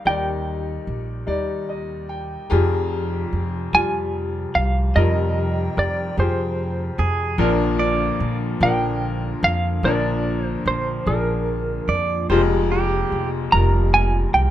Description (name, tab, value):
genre	acoustic folk-pop ballad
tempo	49 BPM (dotted quarters)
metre	6/8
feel	straight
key	F dorian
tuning	A4 = 440 Hz
part	semi-hollow electric guitar	melody	0.0-14.5 s	Bb4 to Bb5	-22 LUFS	right 2 dB	tremolo
part	bright upright piano	accompaniment	0.0-14.5 s	F1 to G5	-24 LUFS	left 4 dB	none
part	upright bass	bass	0.1-14.5 s	F1 to F2	-23 LUFS	right 1 dB	none
part	dark analog pad	sustained chords	2.5-14.5 s	C3 to G5	-32 LUFS	right 1 dB	chorus
part	pedal steel guitar	second line	7.0-13.3 s	G4 to D5	-23 LUFS	right 5 dB	none
room	light reverb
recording	minimal, uncompressed stereo recording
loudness	-19 LUFS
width	side -12 dB against mid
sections	0.0-2.5 A section; 2.5-14.5 B section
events	none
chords	0.0 Ebmaj7; 2.5 Fmadd9; 7.4 Bb; 12.3 Fmadd9